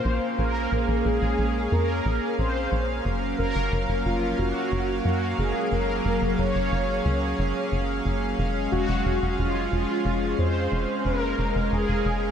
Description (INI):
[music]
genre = synthwave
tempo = 90 BPM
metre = 4/4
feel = straight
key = unclear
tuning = A4 = 440 Hz
[part]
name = mellow synth brass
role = melody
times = 0.0-12.3 s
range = F4 to Db5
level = -28 LUFS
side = equal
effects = chorus, ping-pong delay
[part]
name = soft supersaw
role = sustained chords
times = 0.0-12.3 s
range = Gb3 to F5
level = -27 LUFS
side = equal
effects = lush chorus
[part]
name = tight sequencer bass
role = bass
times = 0.1-12.3 s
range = F1 to Gb2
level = -26 LUFS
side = equal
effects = none
[sound]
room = wet cathedral reverb, RT60 4.9 s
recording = dreamy mix soaked in reverb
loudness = -22 LUFS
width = side -8 dB against mid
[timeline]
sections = 0.0-12.3 A section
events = none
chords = 0.0 Bbm; 3.1 Gb; 8.4 Db/F